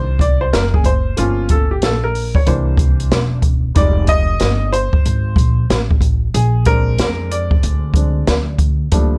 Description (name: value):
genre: hip hop, jazz-hop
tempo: 93 BPM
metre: 4/4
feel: swing 64% on 16ths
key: unclear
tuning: A4 = 440 Hz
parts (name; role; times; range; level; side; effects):
- warm upright piano; accompaniment; 0.0-9.2 s; E3 to Eb5; -23 LUFS; equal; none
- upright bass; bass; 0.0-9.2 s; E1 to F2; -20 LUFS; equal; none
- open jazz drum kit; drums; 0.2-9.1 s; hi-hat, kick drum, snare drum; -18 LUFS; equal; none
room: little or no reverb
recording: none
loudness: -16 LUFS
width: mono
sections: 0.0-9.2 A section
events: upright piano solo 0.0-9.2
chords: 0.0 C7sus2; 1.2 Gm7b5; 2.5 C7; 3.8 Fm9; 6.3 Bb7